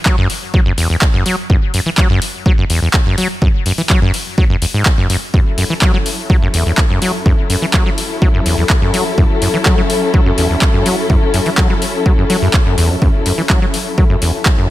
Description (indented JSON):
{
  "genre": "acid house",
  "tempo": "125 BPM",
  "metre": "4/4",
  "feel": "straight",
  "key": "unclear",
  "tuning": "A4 = 440 Hz",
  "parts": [
    { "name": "acid bass, saw", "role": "riff", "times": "0.1-14.7 s", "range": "E2 to F#3", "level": "-17 LUFS", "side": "equal", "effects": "overdrive, ping-pong delay" },
    { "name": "electro analog drum machine", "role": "drums", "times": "0.1-14.6 s", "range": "handclaps, hi-hat", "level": "-19 LUFS", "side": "equal", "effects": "none" },
    { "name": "electronic kick drum", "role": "drums", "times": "0.1-14.6 s", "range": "none", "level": "-13 LUFS", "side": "equal", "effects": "none" },
    { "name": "dark symphonic string section", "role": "sustained chords", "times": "5.3-14.7 s", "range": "F#3 to A4", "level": "-19 LUFS", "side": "left 3 dB", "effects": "sidechain pumping" }
  ],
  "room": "little or no reverb",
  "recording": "none",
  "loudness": "-11 LUFS",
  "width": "side -15 dB against mid",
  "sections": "0.0-14.7 A section",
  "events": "none",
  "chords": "0.0 F#m7"
}